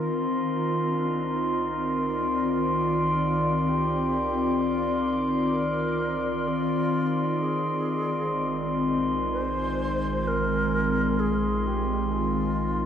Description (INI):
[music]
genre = ambient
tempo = 64 BPM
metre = 4/4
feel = straight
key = C minor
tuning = A4 = 440 Hz
[part]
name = glassy FM pad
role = sustained chords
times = 0.0-12.9 s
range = Eb3 to D5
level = -25 LUFS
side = equal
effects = ensemble chorus, built-in reverb
[part]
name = round analog bass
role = bass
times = 0.0-12.9 s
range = Bb1 to C2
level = -36 LUFS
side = equal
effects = none
[part]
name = glass harmonica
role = texture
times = 0.0-12.9 s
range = C6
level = -30 LUFS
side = equal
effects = none
[part]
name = mellow alto flute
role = melody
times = 0.9-12.9 s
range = D4 to C5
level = -33 LUFS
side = right 1 dB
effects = diffuse ambient delay
[sound]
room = wet plate reverb, RT60 3.2 s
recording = dreamy mix soaked in reverb, cassette tape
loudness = -23 LUFS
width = side -9 dB against mid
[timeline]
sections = 0.0-12.9 A section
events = fade-in on analog synth bass 0.0-12.9; fade-in on alto flute 0.0-12.9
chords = 0.0 Cm11; 7.4 Bb9sus4